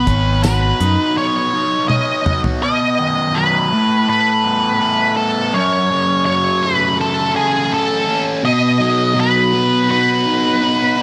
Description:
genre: psychedelic rock.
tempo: 82 BPM.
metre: 4/4.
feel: straight.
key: unclear.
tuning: A4 = 439 Hz.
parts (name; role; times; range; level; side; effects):
octave-fuzz lead guitar; melody; 0.0-11.0 s; G#4 to D#5; -19 LUFS; equal; distortion, slapback echo.
fuzz guitar; riff; 0.0-11.0 s; F#2 to C#5; -19 LUFS; equal; distortion, phaser.
fingered electric bass; bass; 0.0-1.0 s; G#1 to F#2; -19 LUFS; equal; none.
damped 70s drum kit; drums; 0.1-2.6 s; hi-hat, kick drum, snare drum, toms; -21 LUFS; equal; none.
tambourine; percussion; 0.4-0.6 s; none; -35 LUFS; equal; none.
room: light reverb.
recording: none.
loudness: -16 LUFS.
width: mono.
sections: 0.0-2.6 A section; 2.6-11.0 B section.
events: drum fill 1.9-2.6.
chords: 0.0 Badd9; 2.6 B; 3.7 Asus2; 5.5 F#m; 8.4 B.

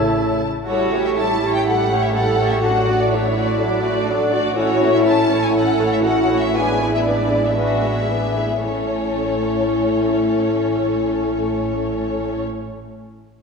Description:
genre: quick classical-period movement for symphony orchestra.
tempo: 109-126 BPM.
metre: 4/4.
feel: rubato.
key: A major.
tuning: A4 = 441 Hz.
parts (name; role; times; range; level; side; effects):
rich chamber violin section; melody; 0.0-12.4 s; C#5 to A5; -24 LUFS; left 3 dB; none.
rich chamber violin section; second line; 0.0-12.4 s; C#4 to D5; -26 LUFS; left 3 dB; none.
rich chamber viola section; accompaniment; 0.0-12.4 s; F#3 to F#4; -26 LUFS; equal; none.
warm French horn section; sustained chords; 0.0-12.4 s; G#3 to G4; -21 LUFS; right 1 dB; none.
dark chamber double bass section; bass; 0.0-12.4 s; A1; -26 LUFS; equal; none.
rich chamber cello section; bass; 0.0-12.4 s; A2 to A4; -25 LUFS; right 3 dB; none.
room: wet scoring stage reverb, RT60 1.9 s.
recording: heard from further back in the room.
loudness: -16 LUFS.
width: side -5 dB against mid.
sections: 0.7-8.6 A section; 8.6-12.9 B section.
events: slowing down 3.6-8.6.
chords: 0.0 A; 0.7 A7; 2.6 D/A; 4.6 A; 6.5 E7/A; 8.6 A.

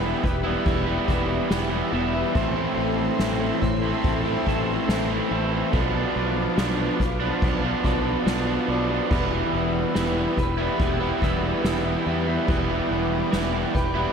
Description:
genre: post-rock.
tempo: 71 BPM.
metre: 4/4.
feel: straight.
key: unclear.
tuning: A4 = 441 Hz.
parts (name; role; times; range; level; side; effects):
lush unison pad; sustained chords; 0.0-14.1 s; G4 to E6; -34 LUFS; equal; chorus.
clean electric guitar; arpeggios; 0.0-14.1 s; A2 to C5; -33 LUFS; left 3 dB; ensemble chorus, ping-pong delay.
electric guitar through a small old amp; arpeggios; 0.0-14.1 s; B4 to E5; -35 LUFS; right 3 dB; ping-pong delay.
crunchy overdriven guitar; riff; 0.0-14.1 s; A2 to E4; -26 LUFS; right 8 dB; none.
raw garage guitar; riff; 0.0-14.1 s; A2 to E4; -28 LUFS; left 9 dB; overdrive.
overdriven fingered electric bass; bass; 0.0-14.1 s; E1 to E2; -29 LUFS; equal; none.
soft-mallet drum kit; drums; 0.2-13.9 s; crash cymbal, kick drum, snare drum; -28 LUFS; equal; none.
room: wet lush hall reverb, RT60 2.1 s.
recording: dreamy mix soaked in reverb.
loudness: -21 LUFS.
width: side -6 dB against mid.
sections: 0.0-14.1 A section.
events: none.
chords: 0.0 Em; 2.4 Am; 5.7 Bdim; 9.1 Em.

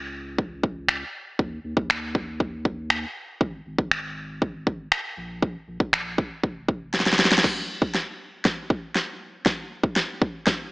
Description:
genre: dance-pop.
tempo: 119 BPM.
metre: 4/4.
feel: straight.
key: Bb minor.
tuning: A4 = 440 Hz.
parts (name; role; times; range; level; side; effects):
warm sub bass; bass; 0.0-7.2 s; F1 to Eb2; -38 LUFS; equal; sidechain pumping.
pop drum kit; drums; 0.4-10.6 s; crash cymbal, finger snaps, kick drum, snare drum; -22 LUFS; equal; none.
room: moderate lush hall reverb, RT60 1.7 s, digital ambience.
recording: AM radio sound.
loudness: -23 LUFS.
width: side -24 dB against mid.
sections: 0.0-7.4 A section; 7.4-10.7 B section.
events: drum fill 6.9-7.4, 7.4-10.7; build-up 7.4-10.7.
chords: none.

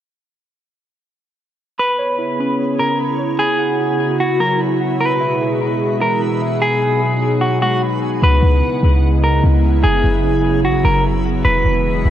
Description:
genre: hip hop.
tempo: 149 BPM.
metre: 4/4.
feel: half-time.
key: C# minor.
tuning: A4 = 440 Hz.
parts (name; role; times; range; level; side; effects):
clean electric guitar; melody; 1.8-12.1 s; F#4 to B4; -18 LUFS; equal; spring reverb, ping-pong delay.
warbly tape-like pad; sustained chords; 2.1-12.1 s; B2 to G#4; -19 LUFS; equal; chorus, built-in reverb.
muted felt-like synth keys; arpeggios; 1.8-8.2 s; C#3 to B5; -24 LUFS; right 1 dB; chorus, ping-pong delay.
backwards swelling texture; texture; 2.4-12.1 s; B3 to F#5; -30 LUFS; right 1 dB; built-in reverb.
clean 808-style bass; bass; 8.2-12.1 s; E1 to C#2; -15 LUFS; equal; none.
room: light reverb, digital ambience.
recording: worn, warbling old tape, cassette tape, warbly pitch drift, nothing above 10.5 kHz.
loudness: -14 LUFS.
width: side -11 dB against mid.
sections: 1.8-8.2 A section; 8.2-12.1 B section.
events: none.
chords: 1.8 C#m7; 3.4 F#7sus4; 5.0 E; 6.6 G#m7; 8.2 C#m7; 9.8 F#7sus4; 11.4 E.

